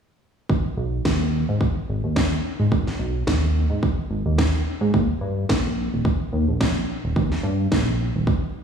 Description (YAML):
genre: nu-disco, nu disco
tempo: 108 BPM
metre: 4/4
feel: swing 55% on 16ths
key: unclear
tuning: A4 = 440 Hz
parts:
  - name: chorused synth bass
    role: bass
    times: 0.5-8.3 s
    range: D#1 to G#2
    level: -22 LUFS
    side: equal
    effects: none
  - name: electronic kick drum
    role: drums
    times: 0.5-8.4 s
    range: none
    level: -23 LUFS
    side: right 1 dB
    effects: none
  - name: electronic snare drum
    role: drums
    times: 1.1-7.8 s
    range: none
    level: -27 LUFS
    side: equal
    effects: none
room: light reverb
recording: played on a big sound system in a bare room, stone room reverb, studio ambience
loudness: -20 LUFS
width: side -7 dB against mid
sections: 0.5-8.6 A section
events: none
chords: none